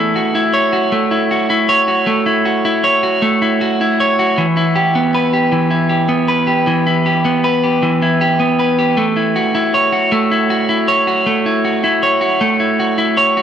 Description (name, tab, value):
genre	pop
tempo	52 BPM (dotted quarters)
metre	6/8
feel	straight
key	unclear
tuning	A4 = 441 Hz
part	electric guitar at the edge of break-up	solo	0.0-13.4 s	E3 to C#5	-12 LUFS	equal	spring reverb, analog delay
room	moderate scoring stage reverb, RT60 2.0 s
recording	none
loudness	-12 LUFS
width	side -8 dB against mid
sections	0.0-13.4 A section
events	none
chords	0.0 A6; 4.4 Em; 9.0 A6